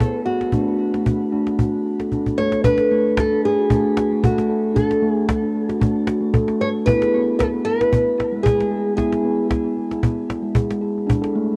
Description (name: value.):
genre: world meditative, meditative tuned percussion.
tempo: 114 BPM.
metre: 4/4.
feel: swing 54% on 16ths.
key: D lydian.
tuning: A4 = 436 Hz.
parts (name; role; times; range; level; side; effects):
nylon-string guitar; melody; 0.0-9.5 s; F#4 to C#5; -24 LUFS; equal; cassette tape, shimmer reverb, tape echo.
steel tongue drum; arpeggios; 0.0-11.6 s; G#3 to A4; -23 LUFS; equal; cassette tape, shimmer reverb, tape echo.
cajon; percussion; 0.0-11.3 s; none; -23 LUFS; equal; none.
room: wet booth ambience, RT60 0.2 s.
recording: home recording on cassette.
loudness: -20 LUFS.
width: mono.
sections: 0.0-2.6 A section; 2.6-11.6 B section.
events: drum fill 2.1-2.6.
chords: 0.0 E; 0.5 D; 6.9 E.